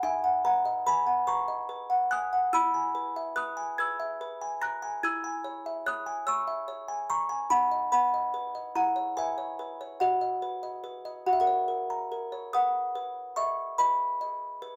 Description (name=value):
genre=classical, lullaby for music box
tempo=48 BPM (dotted quarters)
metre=6/8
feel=straight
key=B major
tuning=A4 = 440 Hz
part: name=music box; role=solo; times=0.0-14.8 s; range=D#4 to A#6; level=-29 LUFS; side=equal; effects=none
room=light reverb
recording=none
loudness=-29 LUFS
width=mono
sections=0.0-12.5 A section; 12.5-14.8 B section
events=none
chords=0.0 B/D#; 2.5 E; 5.0 C#m/E; 7.5 B/D#; 8.8 C#m7/E; 10.0 B/F#; 11.3 F#; 12.5 B